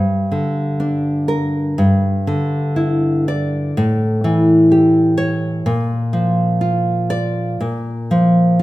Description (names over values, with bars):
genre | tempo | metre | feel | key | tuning
romantic piece for solo classical guitar | 62 BPM | 4/4 | rubato | unclear | A4 = 438 Hz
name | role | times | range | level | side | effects
nylon-string guitar | solo | 0.0-8.6 s | G2 to D5 | -14 LUFS | equal | none
room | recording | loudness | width
wet recital hall reverb, RT60 1.4 s | minimal, uncompressed stereo recording | -14 LUFS | side -16 dB against mid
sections
0.0-8.6 A section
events
none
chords
0.0 Gm; 1.8 Em7/G; 3.7 A7; 5.7 Bb